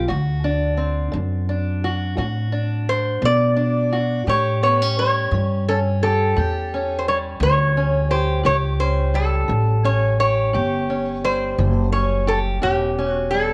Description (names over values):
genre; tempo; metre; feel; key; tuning
acoustic country blues, solo or duo; 57 BPM (dotted quarters); 12/8; straight; unclear; A4 = 437 Hz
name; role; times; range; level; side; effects
fingerpicked steel-string acoustic guitar; accompaniment; 0.0-13.5 s; D2 to G4; -28 LUFS; equal; none
upright bass; bass; 0.0-13.5 s; E1 to B2; -23 LUFS; equal; none
metal-body resonator slide guitar; melody; 2.9-13.5 s; G4 to D5; -23 LUFS; equal; none
room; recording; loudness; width
moderate spring reverb, RT60 1.3 s, studio ambience; none; -20 LUFS; mono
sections
0.0-13.5 A section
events
none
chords
0.1 D7; 4.3 A7